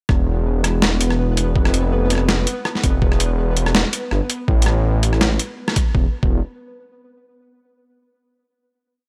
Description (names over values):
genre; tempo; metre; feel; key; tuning
half-time drum and bass; 164 BPM; 4/4; swing 54% on 16ths, half-time; unclear; A4 = 440 Hz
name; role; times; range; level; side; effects
dark detuned saw bass; bass; 0.1-6.4 s; E1 to A1; -21 LUFS; equal; none
boom bap sampler-style drum kit; drums; 0.1-5.8 s; hi-hat, rim click, snare drum; -23 LUFS; equal; overdrive
electronic kick drum; drums; 0.1-6.3 s; none; -20 LUFS; equal; overdrive
pulsing gated texture; texture; 0.3-6.0 s; B3 to B4; -32 LUFS; equal; chorus, built-in reverb
room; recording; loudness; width
little or no reverb; dry, gritty hardware recording; -19 LUFS; mono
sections
0.1-5.9 drop; 5.9-7.4 final note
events
drop 0.1-5.9; band accent 5.7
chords
0.1 E5; 1.6 N.C.; 3.0 Em; 4.5 Asus2; 5.9 N.C.